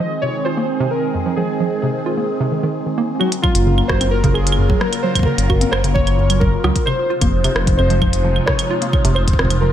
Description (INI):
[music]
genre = IDM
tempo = 131 BPM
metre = 4/4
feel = straight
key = Gb lydian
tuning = A4 = 444 Hz
[part]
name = warbly lo-fi synth keys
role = melody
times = 0.0-9.7 s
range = F4 to Eb5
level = -22 LUFS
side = equal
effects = chorus, ping-pong delay
[part]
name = phased analog pad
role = sustained chords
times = 0.0-9.7 s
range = C3 to Bb4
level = -23 LUFS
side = right 1 dB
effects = phaser, chorus, sidechain pumping
[part]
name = warbly dusty pluck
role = arpeggios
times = 0.0-9.7 s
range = F2 to Gb4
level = -22 LUFS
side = right 1 dB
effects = chorus, cassette tape, tape echo
[part]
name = glitchy drum kit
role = drums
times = 3.2-9.6 s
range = claves, hi-hat, rim click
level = -22 LUFS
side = right 1 dB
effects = studio reverb
[part]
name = electronic kick drum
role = drums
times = 3.4-9.5 s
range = none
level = -19 LUFS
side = equal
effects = studio reverb
[part]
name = dark detuned saw bass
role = bass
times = 3.6-9.7 s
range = F1 to Db2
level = -17 LUFS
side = equal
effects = tube saturation
[sound]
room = light reverb, digital ambience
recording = none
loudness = -14 LUFS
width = side -10 dB against mid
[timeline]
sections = 0.0-3.2 A section; 3.2-9.7 B section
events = none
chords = 0.0 Fm7; 3.2 Gbmaj7; 6.9 Fm7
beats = 0.00 0.46 0.92 | 1.38 1.83 2.29 2.75 | 3.21 3.67 4.12 4.58 | 5.04 5.50 5.96 6.41 | 6.87 7.33 7.79 8.25 | 8.70 9.16 9.62